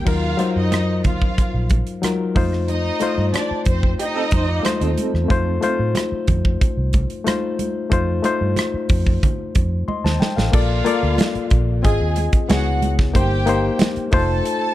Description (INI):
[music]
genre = lush 1970s-style soul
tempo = 92 BPM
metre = 4/4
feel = straight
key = unclear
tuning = A4 = 440 Hz
[part]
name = warm studio violin section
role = second line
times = 0.0-4.9, 10.5-14.7 s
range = C4 to A5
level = -26 LUFS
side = right 1 dB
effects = none
[part]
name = barky reed electric piano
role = accompaniment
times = 0.0-14.7 s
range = Gb3 to C6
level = -22 LUFS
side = left 4 dB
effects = overdrive
[part]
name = electric guitar through a small old amp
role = riff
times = 0.0, 4.0-5.8 s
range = C4 to D5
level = -27 LUFS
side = right 4 dB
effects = tremolo
[part]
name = vintage muted fingered electric bass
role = bass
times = 0.1-14.4 s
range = F1 to A2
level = -21 LUFS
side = equal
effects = none
[part]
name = modern studio drum kit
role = drums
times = 0.1-14.6 s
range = crash cymbal, hi-hat, kick drum, rim click, snare drum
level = -20 LUFS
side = right 1 dB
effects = none
[part]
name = congas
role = percussion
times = 0.1-13.9 s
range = none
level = -29 LUFS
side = right 4 dB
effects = none
[sound]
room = light reverb, small room ambience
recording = dark, warm production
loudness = -17 LUFS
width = side -14 dB against mid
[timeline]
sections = 0.1-10.5 A section; 10.5-14.7 B section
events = drum fill 9.9-10.5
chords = 0.1 Ebmadd9; 2.4 F7; 10.5 Bbmaj7; 11.8 Ab6; 12.5 Dbm7; 13.1 Cm7/G; 14.1 F7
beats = | 0.07 0.72 1.38 2.03 | 2.69 3.34 4.00 4.65 | 5.30 5.96 6.61 7.27 | 7.92 8.57 9.23 9.88 | 10.53 11.19 11.84 12.49 | 13.15 13.80 14.45